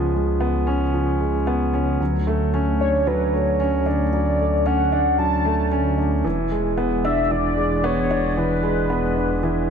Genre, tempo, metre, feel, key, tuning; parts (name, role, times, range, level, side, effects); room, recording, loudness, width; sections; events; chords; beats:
piano and strings electronica; 113 BPM; 4/4; straight; A4 = 441 Hz
dark baby grand piano; riff; 0.0-9.7 s; E3 to D4; -21 LUFS; right 1 dB; low-pass filter, ping-pong delay
dark detuned saw bass; bass; 0.0-9.7 s; E1 to D2; -24 LUFS; left 1 dB
warm velvety synth lead; melody; 2.8-9.7 s; B4 to A5; -23 LUFS; left 1 dB; chorus, phaser
moderate concert hall reverb, RT60 2.2 s; -18 LUFS; side -7 dB against mid
0.0-9.7 A section
0.0 C#7; 2.0 Dmaj7; 6.2 E7
0.41 0.94 1.47 | 2.00 2.53 3.06 3.60 | 4.13 4.66 5.19 5.72 | 6.25 6.78 7.31 7.84 | 8.37 8.90 9.44